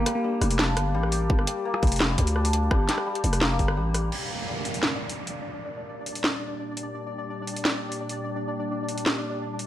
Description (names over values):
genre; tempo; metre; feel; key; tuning
half-time drum and bass; 170 BPM; 4/4; half-time; G minor; A4 = 440 Hz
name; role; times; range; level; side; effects
bell-like FM electric piano; melody; 0.0-0.6 s; Bb3; -32 LUFS; right 2 dB; chorus, tape echo
santur; arpeggios; 0.0-7.7 s; G3 to G4; -30 LUFS; left 3 dB; tape echo
growling 808-style bass; bass; 0.0-4.1 s; F1 to D2; -25 LUFS; equal; tube saturation
drum and bass drum kit; drums; 0.1-9.7 s; crash cymbal, hi-hat, rim click, snare drum; -27 LUFS; equal; none
electronic kick drum; drums; 1.3-3.7 s; none; -23 LUFS; equal; none
dark analog pad; sustained chords; 5.8-9.7 s; Bb3 to G5; -36 LUFS; left 1 dB; chorus, vintage 12-bit sampler grit, sidechain pumping
downlifter; sound effects; 4.1-6.9 s; none; -35 LUFS; right 3 dB; none
pulsing gated texture; texture; 4.5-9.7 s; D4 to D5; -34 LUFS; left 2 dB; chorus, built-in reverb
room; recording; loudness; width
light reverb; none; -24 LUFS; side -12 dB against mid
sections
0.0-4.1 A section; 4.1-9.7 B section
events
drop 0.0-4.1; filter sweep on analog synth pad 4.1-9.7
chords
0.0 Gm